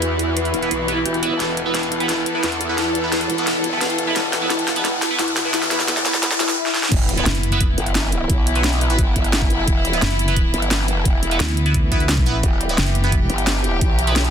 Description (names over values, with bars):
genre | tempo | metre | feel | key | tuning
dark technical drum and bass | 174 BPM | 4/4 | straight | E minor | A4 = 439 Hz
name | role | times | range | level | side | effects
rich studio string section | sustained chords | 0.0-14.3 s | E3 to A4 | -25 LUFS | left 1 dB | sidechain pumping
dark detuned synth bell | arpeggios | 0.0-6.6 s | E4 to B4 | -28 LUFS | left 3 dB | chorus, phaser, sidechain pumping, ping-pong delay
growl bass | bass | 0.0-14.3 s | E1 to E2 | -23 LUFS | equal | chorus, tube saturation
drum and bass drum kit | drums | 0.0-14.3 s | crash cymbal, hi-hat, snare drum | -22 LUFS | equal | overdrive, high-pass filter on hats, high-pass filter on snare, high-pass filter on cymbals, high-pass filter on room
riser, swell and impact | sound effects | 1.0-8.3 s | none | -27 LUFS | left 2 dB | none
granular cloud pad | texture | 0.0-14.3 s | E4 to F#5 | -28 LUFS | right 1 dB | built-in reverb, sidechain pumping
band-passed chord stab | stabs | 0.6-14.1 s | B3 to B4 | -26 LUFS | right 2 dB | phaser, cassette tape, ping-pong delay
electronic kick drum | drums | 6.9-13.9 s | none | -19 LUFS | equal | overdrive
pulsing pluck wobble bass | bass | 7.3-7.8, 10.0-13.3 s | F#1 to D2 | -20 LUFS | equal | chorus
room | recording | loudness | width
light reverb, digital ambience | dense, heavily limited modern master, high-pass filter | -16 LUFS | side -8 dB against mid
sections
0.0-6.9 A section; 6.9-14.3 B section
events
build-up 0.0-6.9; filter sweep on synth bell 0.0-6.9; filter sweep 0.0-6.9; riser 1.0-6.6; drum fill 1.4-6.6, 6.7; swell 6.2-6.9; drop 6.9-14.3; impact 6.9-8.3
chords
0.0 E5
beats
| 0.02 0.37 0.71 1.05 | 1.40 1.75 2.09 2.44 | 2.78 3.12 3.47 3.81 | 4.16 4.50 4.85 5.19 | 5.54 5.88 6.23 6.57 | 6.92 7.26 7.61 7.95 | 8.30 8.64 8.99 9.33 | 9.68 10.02 10.37 10.71 | 11.05 11.40 11.74 12.09 | 12.44 12.78 13.12 13.47 | 13.81 14.16